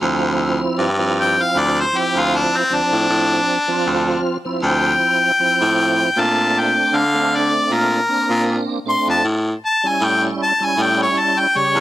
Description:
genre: straight-eighth soul blues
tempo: 78 BPM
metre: 4/4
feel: swing 54% on 16ths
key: D minor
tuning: A4 = 440 Hz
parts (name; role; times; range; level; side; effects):
- tonewheel organ; accompaniment; 0.0-11.8 s; C#3 to G4; -22 LUFS; right 3 dB; chorus vibrato, slow rotary speaker
- raspy baritone saxophone; bass; 0.0-11.8 s; D2 to D3; -20 LUFS; equal; none
- clear harmonica; melody; 1.2-11.8 s; C4 to C6; -17 LUFS; left 1 dB; overdrive
room: light reverb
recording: none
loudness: -15 LUFS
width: side -14 dB against mid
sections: 0.0-11.8 A section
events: harmonica solo 0.0-11.8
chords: 0.0 Dm7; 6.2 Bbmaj7; 9.2 A7

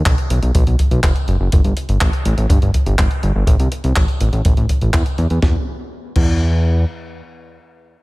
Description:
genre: italo disco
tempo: 123 BPM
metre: 4/4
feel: straight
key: unclear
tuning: A4 = 440 Hz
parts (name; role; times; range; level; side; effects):
- fat analog bass; bass; 0.0-6.8 s; F#1 to E2; -16 LUFS; equal; tube saturation
- clean 12-bit digital drum machine; drums; 0.1-6.3 s; crash cymbal, handclaps, hi-hat, snare drum; -25 LUFS; equal; studio reverb
- kick drum; drums; 0.1-6.3 s; none; -16 LUFS; equal; studio reverb
room: studio ambience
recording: none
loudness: -14 LUFS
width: side -22 dB against mid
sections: 0.0-5.4 A section; 5.4-8.0 B section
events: none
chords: none

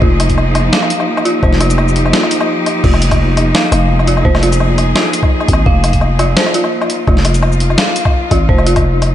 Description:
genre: half-time drum and bass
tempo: 170 BPM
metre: 4/4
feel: swing 54% on 16ths, half-time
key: F minor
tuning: A4 = 440 Hz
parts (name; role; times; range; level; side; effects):
- rich studio cello section; sustained chords; 0.0-9.1 s; F3 to Ab4; -17 LUFS; equal; sidechain pumping
- dark detuned synth bell; arpeggios; 0.0-9.1 s; F4 to F5; -18 LUFS; equal; chorus, vintage 12-bit sampler grit, ping-pong delay
- growling 808-style bass; bass; 0.0-9.1 s; F1 to Ab1; -13 LUFS; equal; none
- electronic kick drum; drums; 0.0-8.8 s; none; -14 LUFS; equal; none
- boom bap sampler-style drum kit; drums; 0.2-9.1 s; crash cymbal, hi-hat, shaker, snare drum, woodblock; -17 LUFS; left 1 dB; none
room: light reverb, digital ambience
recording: nothing above 10.6 kHz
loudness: -10 LUFS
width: side -11 dB against mid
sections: 0.0-9.1 A section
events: none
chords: 0.0 Fm

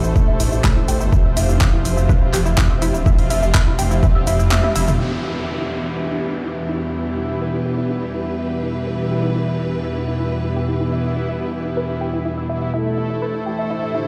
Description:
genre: melodic techno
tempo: 124 BPM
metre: 4/4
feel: straight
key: E phrygian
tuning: A4 = 439 Hz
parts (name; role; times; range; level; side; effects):
- tight sequenced synth; arpeggios; 0.0-14.0 s; E4 to E5; -29 LUFS; equal; chorus, phaser, sidechain pumping, tape echo
- brassy analog pad; stabs; 0.0-14.1 s; E3 to A4; -27 LUFS; equal; chorus, sidechain pumping, tape echo
- dark detuned saw bass; bass; 0.0-5.0 s; D1 to A2; -22 LUFS; equal; sidechain pumping
- overtone-sweeping drone; drone; 0.0-5.0 s; E2 to B2; -37 LUFS; equal; none
- deep house drum kit; drums; 0.0-5.0 s; handclaps, hi-hat, shaker, toms; -27 LUFS; equal; none
- dark symphonic string section; texture; 0.0-14.1 s; E3 to C5; -31 LUFS; equal; sidechain pumping
- electronic kick drum; drums; 0.2-4.1 s; none; -19 LUFS; equal; none
- evolving wavetable pad; sustained chords; 6.5-14.1 s; E2 to C5; -28 LUFS; equal; phaser, built-in reverb, sidechain pumping
- downlifter; sound effects; 5.0-8.9 s; none; -36 LUFS; equal; none
- soft octave-layered synth lead; melody; 12.7-14.1 s; D4 to E4; -31 LUFS; equal; chorus, phaser, sidechain pumping, delay
room: light reverb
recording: played on a big sound system in a bare room, large studio reverb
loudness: -19 LUFS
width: mono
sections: 0.0-5.0 A section; 5.0-14.1 B section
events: filter sweep on synth arpeggio sound 0.0-5.0, 5.0-14.1; filter sweep on analog synth pad 0.0-5.0, 5.0-14.1; kick drops out 4.5-5.0; drum fill 4.5-5.0; band accent 4.5; filter sweep on ambient pad 5.0-14.1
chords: 0.0 Am; 1.1 F5; 5.0 Em; 12.7 Am

